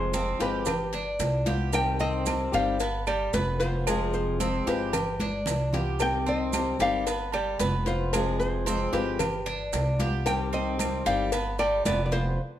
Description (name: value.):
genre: latin, Cuban son and guajira.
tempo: 113 BPM.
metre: 4/4.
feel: straight.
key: unclear.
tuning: A4 = 440 Hz.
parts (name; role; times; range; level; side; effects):
nylon-string guitar; melody; 0.0-12.4 s; B4 to G5; -30 LUFS; equal; none.
fingerpicked steel-string acoustic guitar; accompaniment; 0.0-12.4 s; C3 to G4; -32 LUFS; left 5 dB; none.
Cuban tres; arpeggios; 0.0-12.4 s; G3 to G4; -32 LUFS; right 3 dB; none.
upright bass; bass; 0.0-12.4 s; F1 to C2; -31 LUFS; equal; none.
congas; percussion; 0.1-12.1 s; none; -36 LUFS; equal; none.
cowbell; percussion; 0.1-12.4 s; none; -36 LUFS; left 6 dB; none.
maracas; percussion; 0.1-12.4 s; none; -40 LUFS; right 10 dB; none.
timbales and agogo bells; percussion; 0.1-12.1 s; none; -35 LUFS; right 3 dB; none.
claves; percussion; 0.7-11.9 s; none; -40 LUFS; right 4 dB; none.
room: moderate large studio reverb, RT60 1.2 s.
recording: none.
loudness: -24 LUFS.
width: side -11 dB against mid.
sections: 0.0-12.6 A section.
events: drum fill 5.2-6.0; band accent 12.4.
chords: 0.0 Fm; 0.7 G7; 1.7 Cm; 2.8 G7; 3.9 Fm; 4.9 G7; 6.0 Cm; 7.1 G7; 8.1 Fm; 9.2 G7; 10.3 Cm; 11.3 G7.